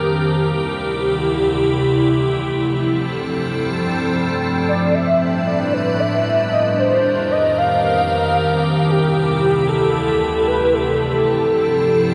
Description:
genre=IDM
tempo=free time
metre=none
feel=none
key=unclear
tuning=A4 = 440 Hz
part: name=icy glass pad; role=sustained chords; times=0.0-12.1 s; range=D2 to B4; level=-20 LUFS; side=equal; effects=chorus, built-in reverb
part: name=warbly nostalgic lead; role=melody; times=4.7-12.1 s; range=G4 to F5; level=-20 LUFS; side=equal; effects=analog chorus, vintage 12-bit sampler grit, tape echo
room=wet lush hall reverb, RT60 2.7 s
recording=dreamy mix soaked in reverb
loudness=-18 LUFS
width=mono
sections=0.0-12.1 A section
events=none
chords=0.2 D9sus4; 2.3 G9sus4; 4.7 A9sus4; 6.5 F9sus4; 8.6 D9sus4; 10.7 G9sus4

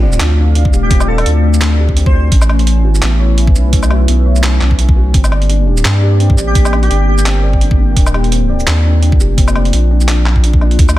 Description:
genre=half-time drum and bass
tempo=170 BPM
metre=4/4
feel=swing 56% on 16ths, half-time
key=unclear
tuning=A4 = 445 Hz
part: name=dark analog pad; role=sustained chords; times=0.0-11.0 s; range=A3 to G5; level=-21 LUFS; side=left 4 dB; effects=chorus, sidechain pumping
part: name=felt-muted upright piano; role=arpeggios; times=0.0-11.0 s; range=B3 to D5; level=-22 LUFS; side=left 2 dB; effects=ping-pong delay
part: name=saturated sub bass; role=bass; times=0.0-11.0 s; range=Eb1 to G2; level=-11 LUFS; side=equal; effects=none
part: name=impact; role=sound effects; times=0.0-0.9 s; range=none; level=-27 LUFS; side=equal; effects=none
part: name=boom bap sampler-style drum kit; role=drums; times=0.1-11.0 s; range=handclaps, hi-hat, shaker, woodblock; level=-19 LUFS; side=right 1 dB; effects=none
part: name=electronic kick drum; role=drums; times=0.7-10.9 s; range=none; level=-11 LUFS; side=equal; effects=none
part: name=airy dreamy lead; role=melody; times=0.8-2.2, 6.5-7.2 s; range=G4 to C5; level=-22 LUFS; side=equal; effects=chorus, ping-pong delay
room=digital ambience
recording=none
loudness=-9 LUFS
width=side -15 dB against mid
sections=0.0-11.0 A section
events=impact 0.0-0.9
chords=0.0 Dm; 2.3 Asus2; 5.1 Gm; 8.0 Ebadd9

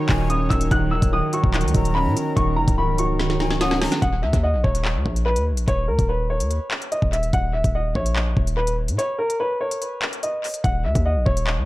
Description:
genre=hip hop, drill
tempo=145 BPM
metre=4/4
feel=half-time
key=Eb phrygian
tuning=A4 = 435 Hz
part: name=warm upright piano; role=melody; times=0.0-11.7 s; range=Bb4 to Gb6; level=-25 LUFS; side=equal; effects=low-pass filter, tape echo
part: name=dark grand piano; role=accompaniment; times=0.0-4.0 s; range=Eb3 to Db4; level=-24 LUFS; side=right 2 dB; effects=low-pass filter
part: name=sweeping resonant pad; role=sustained chords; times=0.0-4.0 s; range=Gb3 to Db5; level=-32 LUFS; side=right 1 dB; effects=chorus
part: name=breathy jazz flute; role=second line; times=0.1-4.0 s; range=Gb5 to Bb5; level=-34 LUFS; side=left 4 dB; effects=tape echo
part: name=hard-hitting 808-style bass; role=bass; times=0.1-11.7 s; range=Db1 to Bb2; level=-22 LUFS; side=equal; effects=none
part: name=drill drum kit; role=drums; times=0.1-11.6 s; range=handclaps, hi-hat, kick drum, snare drum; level=-23 LUFS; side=equal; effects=overdrive, tape echo
room=studio reverb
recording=echo-heavy mix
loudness=-19 LUFS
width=side -17 dB against mid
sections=0.0-4.0 A section; 4.0-11.7 B section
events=drum fill 3.2-4.0; break 9.0-10.6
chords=0.0 Ebm7; 4.0 Eb5

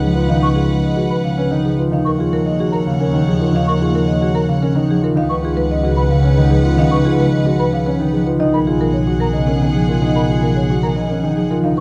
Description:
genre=classical, minimalist pattern music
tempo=111 BPM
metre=3/4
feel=straight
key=G# dorian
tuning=A4 = 438 Hz
part: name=marimba with medium mallets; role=melody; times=0.0-11.8 s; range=G#4 to E#5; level=-26 LUFS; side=equal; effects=none
part: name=concert harp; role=accompaniment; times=0.0-11.8 s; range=C#3 to B3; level=-19 LUFS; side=equal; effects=none
part: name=warm chamber violin section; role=sustained chords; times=0.0-11.8 s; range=G#4 to F#5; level=-30 LUFS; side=equal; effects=none
part: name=dark grand piano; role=arpeggios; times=0.0-11.8 s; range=C#4 to F#4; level=-26 LUFS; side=equal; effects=none
part: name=warm chamber double bass section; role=bass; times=0.0-11.8 s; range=B1 to D#2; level=-23 LUFS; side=equal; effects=none
part: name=mellow hollow silver concert flute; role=arpeggios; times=0.4-11.8 s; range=A#5 to C#6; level=-29 LUFS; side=equal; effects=none
room=moderate large studio reverb, RT60 1.3 s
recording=dark, warm production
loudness=-16 LUFS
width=mono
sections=0.0-11.8 A section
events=none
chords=0.0 C#9sus4; 1.9 D#m9; 5.2 C#9sus4; 8.4 G#m11/B

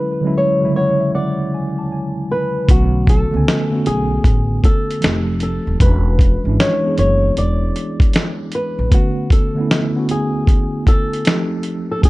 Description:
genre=lo-fi hip hop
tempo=77 BPM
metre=4/4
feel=swing 63% on 16ths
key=unclear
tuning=A4 = 439 Hz
part: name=flamenco guitar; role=melody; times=0.0-12.1 s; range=F#4 to D5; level=-22 LUFS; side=left 1 dB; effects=low-pass filter, analog delay
part: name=mellow tine electric piano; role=accompaniment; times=0.0-12.1 s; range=C#3 to B5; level=-20 LUFS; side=right 1 dB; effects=medium stereo tremolo, low-pass filter
part: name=upright bass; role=bass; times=2.7-8.9 s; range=Eb1 to C#2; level=-18 LUFS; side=equal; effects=none
part: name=dusty soul sampler-style drum kit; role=drums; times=2.7-12.1 s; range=hi-hat, kick drum, snare drum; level=-14 LUFS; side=equal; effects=none
room=little or no reverb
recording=dark, warm production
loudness=-14 LUFS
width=side -20 dB against mid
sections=0.0-12.1 A section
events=none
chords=0.0 E13; 2.7 Bm9; 5.0 F9; 5.8 E13; 8.9 Bm9; 11.3 F9

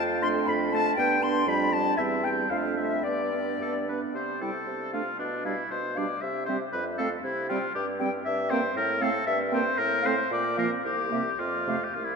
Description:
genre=quick classical-period movement for wind quintet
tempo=106-120 BPM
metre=2/4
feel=rubato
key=C major, F major from 8.3 s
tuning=A4 = 440 Hz
part: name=silver concert flute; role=melody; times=0.0-11.8 s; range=D5 to C6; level=-32 LUFS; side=left 5 dB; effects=none
part: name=warm oboe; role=second line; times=0.0-12.2 s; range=D4 to C6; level=-29 LUFS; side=left 2 dB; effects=none
part: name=dark bassoon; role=bass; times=0.0-12.2 s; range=C2 to C3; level=-33 LUFS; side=right 3 dB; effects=none
part: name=clear French horn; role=accompaniment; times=0.2-11.8 s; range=C3 to B3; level=-35 LUFS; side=right 1 dB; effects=none
part: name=dark clarinet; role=accompaniment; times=0.2-11.8 s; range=A3 to E4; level=-33 LUFS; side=right 7 dB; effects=none
room=wet cathedral reverb, RT60 7.0 s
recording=in a vast, echoing space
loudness=-25 LUFS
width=side -5 dB against mid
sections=0.0-4.2 A section; 4.2-12.2 B section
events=none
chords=0.0 Dm/F; 1.0 G; 1.5 G7/F; 2.0 C/E; 2.5 Dm/F; 3.1 G; 4.2 C; 4.7 Dm7/C; 5.2 G7/B; 6.2 C; 6.7 F; 7.2 C5; 8.3 C7/G; 8.8 F/A; 9.3 C7/G; 9.8 F/A; 10.3 Bb; 10.8 C7; 11.4 F

